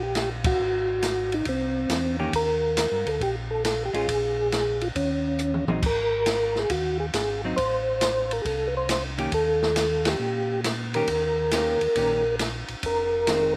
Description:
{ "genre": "soul jazz organ trio", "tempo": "137 BPM", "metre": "4/4", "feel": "swing 67% on 8ths", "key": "Eb mixolydian", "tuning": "A4 = 440 Hz", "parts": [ { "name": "percussive tonewheel organ", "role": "melody", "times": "0.0-13.5 s", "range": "C4 to C5", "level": "-27 LUFS", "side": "equal", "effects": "slow rotary speaker, chorus vibrato" }, { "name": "mellow tonewheel organ", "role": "bass", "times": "0.0-13.6 s", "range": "F1 to Bb2", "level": "-35 LUFS", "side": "equal", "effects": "chorus vibrato, slow rotary speaker" }, { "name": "open jazz drum kit", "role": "drums", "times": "0.1-13.4 s", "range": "crash cymbal, hi-hat, kick drum, ride cymbal, snare drum, toms", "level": "-32 LUFS", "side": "equal", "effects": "none" }, { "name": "hollow-body jazz guitar", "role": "accompaniment", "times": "2.2-13.5 s", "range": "Eb3 to G4", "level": "-32 LUFS", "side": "equal", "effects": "slapback echo" } ], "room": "little or no reverb", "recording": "recorded outdoors, with no room sound", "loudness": "-25 LUFS", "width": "mono", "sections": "0.0-13.6 A section", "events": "band accent 0.4, 10.0; drum fill 5.4-5.8", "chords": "0.0 Eb (rootless); 0.6 Ab7; 2.3 Eb; 4.1 Fmadd11/Bb (rootless); 5.0 Eb5; 5.8 Ab5; 7.6 Am; 9.3 Eb7; 12.8 Fm7", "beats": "0.15 | 0.58 1.02 1.46 1.89 | 2.33 2.77 3.20 3.64 | 4.08 4.51 4.95 5.39 | 5.83 6.26 6.70 7.14 | 7.58 8.01 8.45 8.89 | 9.32 9.76 10.20 10.64 | 11.07 11.51 11.95 12.39 | 12.82 13.26" }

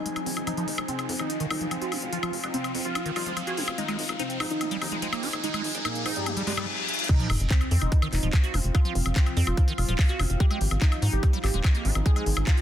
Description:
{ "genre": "psychedelic trance", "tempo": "145 BPM", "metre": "4/4", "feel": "straight", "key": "F minor", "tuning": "A4 = 440 Hz", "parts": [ { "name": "wide unison lead", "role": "melody", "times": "0.0-12.6 s", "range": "G3 to Ab4", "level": "-34 LUFS", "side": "right 1 dB", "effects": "phaser, sidechain pumping, ping-pong delay" }, { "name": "resonant blip pluck", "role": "second line", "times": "0.0-6.7 s", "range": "C4 to Ab4", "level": "-42 LUFS", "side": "right 2 dB", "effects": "none" }, { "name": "evolving wavetable pad", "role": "sustained chords", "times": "0.0-12.6 s", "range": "F3 to C4", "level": "-40 LUFS", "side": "equal", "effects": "ensemble chorus, built-in reverb, vintage 12-bit sampler grit, sidechain pumping" }, { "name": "riser, reverse cymbal and sub drop", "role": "sound effects", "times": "0.0-8.7 s", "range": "none", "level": "-34 LUFS", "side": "left 1 dB", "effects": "none" }, { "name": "warbly tape-like pad", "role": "texture", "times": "0.0-12.6 s", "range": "C4 to Ab5", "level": "-37 LUFS", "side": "right 2 dB", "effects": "chorus, built-in reverb, sidechain pumping" }, { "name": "liquid acid bass", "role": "riff", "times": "0.1-12.5 s", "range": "Eb3 to Gb4", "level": "-34 LUFS", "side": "moving between left 4 dB and right 3 dB", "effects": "phaser, auto-pan, sidechain pumping, ping-pong delay" }, { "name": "drum and bass drum kit", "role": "drums", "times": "0.1-12.6 s", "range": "crash cymbal, handclaps, hi-hat, woodblock", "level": "-32 LUFS", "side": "left 2 dB", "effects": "none" }, { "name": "tight sequencer bass", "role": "bass", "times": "0.3-12.4 s", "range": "Eb1 to Ab2", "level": "-27 LUFS", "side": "equal", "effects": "high-pass filter" }, { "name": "electronic kick drum", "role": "drums", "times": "7.1-12.6 s", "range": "none", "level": "-21 LUFS", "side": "equal", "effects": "none" } ], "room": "light reverb", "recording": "dense, heavily limited modern master", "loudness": "-23 LUFS", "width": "side -11 dB against mid", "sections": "0.0-7.1 A section; 7.1-12.6 B section", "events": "build-up 0.0-7.1; riser 0.0-7.1; filter sweep on acid bass 0.0-7.1; filter sweep on ambient pad 0.0-7.1; reverse cymbal 6.3-7.1; drum fill 6.9; drop 7.1-12.6; impact 7.1-8.7", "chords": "0.5 F5; 3.8 Ab5; 7.1 F5; 10.4 Ab5", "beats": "0.06 | 0.47 0.89 1.30 1.71 | 2.13 2.54 2.95 3.37 | 3.78 4.20 4.61 5.02 | 5.44 5.85 6.26 6.68 | 7.09 7.50 7.92 8.33 | 8.75 9.16 9.57 9.99 | 10.40 10.82 11.23 11.64 | 12.06 12.47" }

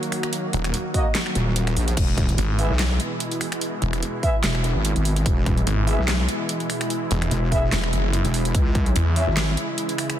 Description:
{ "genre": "heavy wobble dubstep", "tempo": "146 BPM", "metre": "4/4", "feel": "swing 54% on 16ths, half-time", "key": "unclear", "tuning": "A4 = 440 Hz", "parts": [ { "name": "supersaw pad", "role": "sustained chords", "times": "0.0-10.2 s", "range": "B2 to F#4", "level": "-28 LUFS", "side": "equal", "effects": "vintage 12-bit sampler grit, sidechain pumping, low-pass filter" }, { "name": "dubstep drum kit", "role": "drums", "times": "0.0-10.2 s", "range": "crash cymbal, finger snaps, handclaps, hi-hat, snare drum", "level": "-28 LUFS", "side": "equal", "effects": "none" }, { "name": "snarling distorted saw bass", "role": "bass", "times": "0.5-9.3 s", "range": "D#1 to E2", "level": "-22 LUFS", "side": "equal", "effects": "distortion, overdrive" }, { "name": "mellow brass ensemble", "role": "stabs", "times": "0.9-9.3 s", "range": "A#3 to E5", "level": "-30 LUFS", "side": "right 1 dB", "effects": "ping-pong delay" }, { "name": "electronic kick drum", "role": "drums", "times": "0.9-8.8 s", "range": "none", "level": "-22 LUFS", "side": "equal", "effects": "none" }, { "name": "wobble bass", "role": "bass", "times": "1.4-9.6 s", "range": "D#1 to C#2", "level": "-22 LUFS", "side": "equal", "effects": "chorus, overdrive" } ], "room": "light reverb", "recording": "dense, heavily limited modern master", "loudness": "-20 LUFS", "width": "side -11 dB against mid", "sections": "0.0-10.2 A section", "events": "none", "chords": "0.0 D#m; 2.0 E; 8.5 C#m", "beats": "| 0.33 0.74 1.15 1.56 | 1.97 2.38 2.79 3.20 | 3.61 4.03 4.44 4.85 | 5.26 5.67 6.08 6.49 | 6.90 7.31 7.72 8.13 | 8.55 8.96 9.37 9.78 | 10.19" }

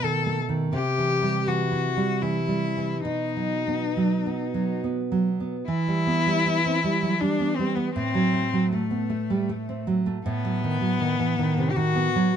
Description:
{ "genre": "romantic duo for cello and classical guitar", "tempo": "66-88 BPM", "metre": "3/4", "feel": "rubato", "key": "E minor", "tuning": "A4 = 440 Hz", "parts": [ { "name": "rich cello", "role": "melody", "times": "0.0-12.4 s", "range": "A3 to A4", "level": "-26 LUFS", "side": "left 5 dB", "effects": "none" }, { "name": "nylon-string guitar", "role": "accompaniment", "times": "0.0-12.4 s", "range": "A2 to E4", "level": "-24 LUFS", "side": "right 3 dB", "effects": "none" } ], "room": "moderate studio reverb, RT60 0.6 s", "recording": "nothing above 10.8 kHz", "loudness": "-22 LUFS", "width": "side -8 dB against mid", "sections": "0.0-5.7 A section; 5.7-12.4 B section", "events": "none", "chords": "0.0 B7; 0.7 C; 3.1 B; 5.7 Em; 7.9 F#dim/A; 10.2 B7/A", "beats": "0.03 | 0.74 1.48 2.22 | 3.05 3.96 4.83 | 5.66 6.44 7.20 | 7.94 8.71 9.48 | 10.24 11.00 11.77" }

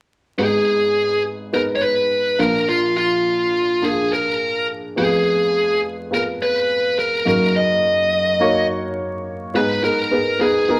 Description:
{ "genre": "pop", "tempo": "105 BPM", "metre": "4/4", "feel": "straight", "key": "unclear", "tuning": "A4 = 440 Hz", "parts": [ { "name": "bluesy overdriven lead guitar", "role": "melody", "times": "0.4-10.8 s", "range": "F4 to Eb5", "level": "-20 LUFS", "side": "equal", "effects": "distortion" }, { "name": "warm upright piano", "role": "accompaniment", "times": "0.4-10.8 s", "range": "F1 to Db5", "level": "-24 LUFS", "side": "equal", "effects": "none" } ], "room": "wet studio reverb, RT60 0.9 s", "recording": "vinyl crackle", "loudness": "-19 LUFS", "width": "mono", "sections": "0.4-9.5 A section; 9.5-10.8 B section", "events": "none", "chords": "0.4 Abm; 2.4 Bb; 5.0 Fdim; 7.3 Ebm/Gb; 9.5 Abm", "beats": "| 0.39 0.96 1.53 2.11 | 2.68 3.25 3.82 4.40 | 4.97 5.54 6.11 6.69 | 7.26 7.83 8.40 8.98 | 9.55 10.12 10.69" }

